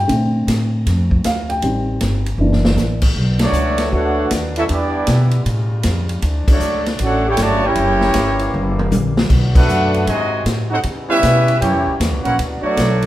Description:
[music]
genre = jazz, big band swing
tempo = 156 BPM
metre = 4/4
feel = swing 65% on 8ths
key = B minor from 3.2 s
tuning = A4 = 443 Hz
[part]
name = dark baby grand piano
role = accompaniment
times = 0.0-3.0 s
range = D3 to G5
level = -19 LUFS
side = equal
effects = none
[part]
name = upright bass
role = bass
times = 0.0-13.1 s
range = F#1 to C#3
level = -19 LUFS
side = equal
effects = none
[part]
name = swinging big-band drum kit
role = drums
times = 0.1-13.1 s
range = crash cymbal, hi-hat, kick drum, ride cymbal, snare drum, toms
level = -19 LUFS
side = equal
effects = none
[part]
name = clear trombone section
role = sustained chords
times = 3.1-13.1 s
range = B2 to E#4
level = -29 LUFS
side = left 2 dB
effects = none
[part]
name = clear trumpet section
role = melody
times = 3.4-13.1 s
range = A3 to A5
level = -19 LUFS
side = equal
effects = none
[part]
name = clear trombone section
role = second line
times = 3.4-13.1 s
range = B#2 to G4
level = -21 LUFS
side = right 1 dB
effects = none
[sound]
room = moderate large studio reverb, RT60 1.1 s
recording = heard from further back in the room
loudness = -14 LUFS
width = side -14 dB against mid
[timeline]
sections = 0.0-3.2 A section; 3.2-13.1 B section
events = grand piano solo 0.0-3.2; drum fill 2.4-2.8, 8.5-9.3; band accent 3.4, 6.4, 9.5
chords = 0.1 Bbmaj7; 1.6 Am7b5; 2.4 F#7alt; 3.2 Bm9; 4.7 Em7; 5.5 Aaug7; 6.2 Dmaj7; 7.8 F#7b9; 9.3 Bm7; 10.1 G#7b9; 10.8 C#m7b5; 11.6 F#7b9; 12.4 Bm9

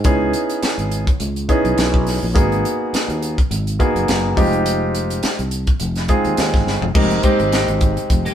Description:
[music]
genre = electric jazz fusion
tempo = 104 BPM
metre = 4/4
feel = swing 55% on 16ths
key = F minor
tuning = A4 = 440 Hz
[part]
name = warm concert grand piano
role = accompaniment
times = 0.0-8.2 s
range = Ab3 to C5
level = -19 LUFS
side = equal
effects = none
[part]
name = sustaining fretless electric bass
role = bass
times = 0.0-8.3 s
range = F1 to Eb2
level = -22 LUFS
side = equal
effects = none
[part]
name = crisp fusion drum kit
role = drums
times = 0.0-8.3 s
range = crash cymbal, hi-hat, kick drum, snare drum, toms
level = -19 LUFS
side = equal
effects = none
[part]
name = clean electric guitar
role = stabs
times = 7.0-8.3 s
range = Ab3 to G4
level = -25 LUFS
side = left 4 dB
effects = none
[sound]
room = light reverb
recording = band playing live in one room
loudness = -15 LUFS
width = side -10 dB against mid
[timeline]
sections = 0.0-7.0 A section; 7.0-8.3 B section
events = drum fill 6.7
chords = 0.1 Dbm9; 2.4 Abm9; 4.4 Fm9; 7.0 Fm11

